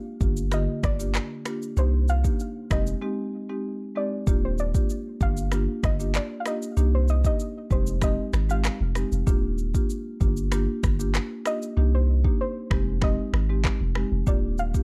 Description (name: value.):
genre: afrobeats.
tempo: 96 BPM.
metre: 4/4.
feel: straight.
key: Eb major.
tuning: A4 = 439 Hz.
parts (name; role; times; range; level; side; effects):
soft round pluck; melody; 0.0-14.8 s; C5 to F5; -35 LUFS; equal; chorus, plate reverb, digital delay.
marimba with medium mallets; accompaniment; 0.2-14.8 s; D3 to G4; -33 LUFS; equal; plate reverb.
punchy sub bass; bass; 0.2-14.7 s; Eb1 to C2; -26 LUFS; equal; none.
afro-pop drum kit; drums; 0.2-14.8 s; finger snaps, handclaps, kick drum, rim click, shaker; -28 LUFS; equal; none.
room: little or no reverb.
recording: dark, warm production.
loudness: -25 LUFS.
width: mono.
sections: 0.0-4.3 A section; 4.3-14.8 B section.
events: break 3.0-4.3; hi-hats muted 11.8-14.3.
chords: 0.0 Ebmaj7; 1.8 Cm7; 2.7 Fm7; 4.3 Ebmaj7; 6.8 Cm7; 7.7 Fm7; 9.3 Ebmaj7; 11.8 Cm7; 12.7 Fm7; 14.3 Ebmaj7.